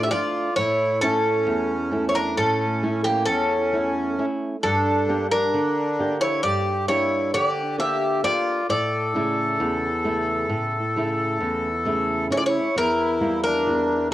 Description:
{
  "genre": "greek folk, Greek bouzouki band",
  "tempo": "133 BPM (eighths)",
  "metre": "9/8",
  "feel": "straight",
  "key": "unclear",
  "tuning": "A4 = 440 Hz",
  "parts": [
    { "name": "Greek bouzouki", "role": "melody", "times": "0.0-14.1 s", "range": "G4 to E5", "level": "-23 LUFS", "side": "equal", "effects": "cassette tape, plate reverb" },
    { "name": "accordion", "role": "second line", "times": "0.0-14.1 s", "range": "Bb3 to A4", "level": "-26 LUFS", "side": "left 1 dB", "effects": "cassette tape, plate reverb" },
    { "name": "flamenco guitar", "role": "accompaniment", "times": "0.0-14.1 s", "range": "E2 to G4", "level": "-26 LUFS", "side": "right 1 dB", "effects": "cassette tape, plate reverb" }
  ],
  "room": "wet small room ambience, RT60 0.5 s",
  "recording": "home recording on cassette",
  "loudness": "-20 LUFS",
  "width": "side -14 dB against mid",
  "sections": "0.0-12.8 A section; 12.8-14.1 B section",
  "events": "none",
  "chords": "0.0 Dm; 0.6 A; 4.6 Gm; 8.7 A; 12.8 Edim"
}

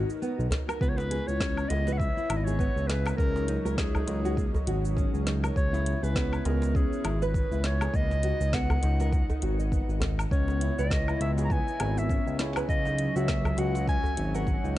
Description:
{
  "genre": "organic downtempo",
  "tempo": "101 BPM",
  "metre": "4/4",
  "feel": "swing 57% on 16ths",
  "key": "C# dorian",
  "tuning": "A4 = 441 Hz",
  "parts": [
    { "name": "warm clarinet", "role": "melody", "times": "0.0-14.8 s", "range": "G#4 to A#5", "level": "-34 LUFS", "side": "equal", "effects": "tape echo, shimmer reverb" },
    { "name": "warm analog pad", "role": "sustained chords", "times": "0.0-14.8 s", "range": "F#3 to C#5", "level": "-36 LUFS", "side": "equal", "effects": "chorus, sidechain pumping, shimmer reverb" },
    { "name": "nylon-string guitar", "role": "arpeggios", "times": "0.0-14.8 s", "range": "A#3 to D#5", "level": "-35 LUFS", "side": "left 1 dB", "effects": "tape echo, shimmer reverb" },
    { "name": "smooth synth bass", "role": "bass", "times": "0.0-14.8 s", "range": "G#1 to C#2", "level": "-28 LUFS", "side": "equal", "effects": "sidechain pumping" },
    { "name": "afro-pop drum kit", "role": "drums", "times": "0.1-14.7 s", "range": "cabasa, hi-hat, snare drum, woodblock", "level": "-36 LUFS", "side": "left 1 dB", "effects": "small room reverb" },
    { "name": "djembe", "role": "percussion", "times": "0.5-14.1 s", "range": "none", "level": "-34 LUFS", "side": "equal", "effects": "none" },
    { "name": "electronic kick drum", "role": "drums", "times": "0.8-14.6 s", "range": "none", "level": "-29 LUFS", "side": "equal", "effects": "small room reverb" }
  ],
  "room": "studio reverb",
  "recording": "dark, warm production, nothing above 10.8 kHz",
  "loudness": "-25 LUFS",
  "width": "side -15 dB against mid",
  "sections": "0.0-14.8 A section",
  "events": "break 0.0-0.8",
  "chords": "0.0 Bmaj7; 0.8 C#m7; 3.2 D#m7/C#; 5.6 C#m7; 7.9 B/C#; 10.3 C#m7; 12.7 D#m7/C#"
}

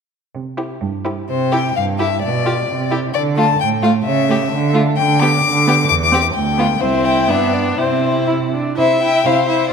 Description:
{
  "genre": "quick classical-period movement for string quartet",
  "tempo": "129 BPM",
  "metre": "2/4",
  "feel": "rubato",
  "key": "C major",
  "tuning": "A4 = 440 Hz",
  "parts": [
    { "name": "rich cello", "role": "bass", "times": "0.3-9.7 s", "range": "C2 to D3", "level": "-19 LUFS", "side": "right 4 dB", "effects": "none" },
    { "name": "rich violin", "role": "melody", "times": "0.6-9.7 s", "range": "C5 to D6", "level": "-18 LUFS", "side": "left 9 dB", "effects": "none" },
    { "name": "clear violin", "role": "second line", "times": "0.6-9.7 s", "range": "D4 to E5", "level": "-21 LUFS", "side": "left 2 dB", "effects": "none" },
    { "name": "clear viola", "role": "accompaniment", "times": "0.6-9.7 s", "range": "A3 to F4", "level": "-22 LUFS", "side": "right 3 dB", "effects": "none" }
  ],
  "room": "wet concert hall reverb, RT60 2.1 s",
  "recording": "none",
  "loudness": "-14 LUFS",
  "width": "side -6 dB against mid",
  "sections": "1.3-8.8 A section",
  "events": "none",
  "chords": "0.3 C; 2.2 G7/B (rootless); 2.7 C; 3.1 Dm; 4.1 A/C#; 4.5 D5; 5.0 G/D; 5.9 C/E; 6.3 G/D; 6.8 C; 7.3 G; 7.8 C"
}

